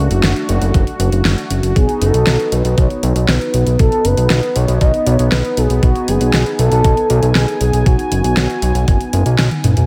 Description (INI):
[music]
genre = synthwave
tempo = 118 BPM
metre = 4/4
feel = straight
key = unclear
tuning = A4 = 441 Hz
[part]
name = brassy analog pad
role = sustained chords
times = 0.0-9.9 s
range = A3 to G#5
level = -24 LUFS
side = equal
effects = chorus, sidechain pumping
[part]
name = fat analog bass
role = bass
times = 0.0-9.9 s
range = F#1 to B1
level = -17 LUFS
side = equal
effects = sidechain pumping
[part]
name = pop drum kit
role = drums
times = 0.1-9.9 s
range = hi-hat, snare drum, toms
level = -22 LUFS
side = equal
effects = small room reverb
[part]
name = electronic kick drum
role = drums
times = 0.7-9.0 s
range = none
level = -16 LUFS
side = equal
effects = overdrive, small room reverb
[part]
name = expressive synth lead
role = melody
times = 1.8-9.6 s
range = F#4 to D#5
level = -21 LUFS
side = equal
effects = chorus, digital delay
[sound]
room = light reverb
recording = none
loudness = -14 LUFS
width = mono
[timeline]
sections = 0.0-9.9 A section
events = drum fill 9.5-9.9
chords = 0.0 D/F#; 1.8 B